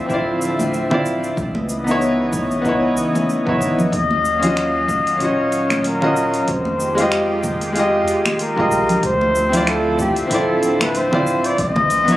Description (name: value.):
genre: sunset chillout.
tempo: 94 BPM.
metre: 4/4.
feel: swing 56% on 16ths.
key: unclear.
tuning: A4 = 435 Hz.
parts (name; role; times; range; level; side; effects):
clear concert grand piano; accompaniment; 0.0-12.2 s; Ab3 to Eb5; -19 LUFS; equal; auto-pan, low-pass filter, digital delay.
lush unison pad; sustained chords; 0.0-12.2 s; Db3 to F5; -26 LUFS; equal; chorus.
round analog bass; bass; 0.1-12.2 s; D1 to F2; -29 LUFS; equal; tube saturation.
electronic kick drum; drums; 0.1-11.7 s; none; -28 LUFS; equal; none.
smooth R&B drum kit; drums; 0.1-12.2 s; cabasa, congas, finger snaps, hi-hat; -25 LUFS; equal; none.
congas; percussion; 0.6-12.2 s; none; -25 LUFS; right 1 dB; none.
mellow flugelhorn; melody; 3.9-12.2 s; G4 to Eb5; -19 LUFS; left 1 dB; vintage 12-bit sampler grit, digital delay.
room: light reverb.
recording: recorded on a phone in the room, club reverb, compression.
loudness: -16 LUFS.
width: side -15 dB against mid.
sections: 0.0-12.2 A section.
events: none.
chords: 0.0 Dm9; 1.4 Dbm9; 3.9 Ebm9; 6.5 Fm9; 9.0 Dm9; 11.6 Dbm9.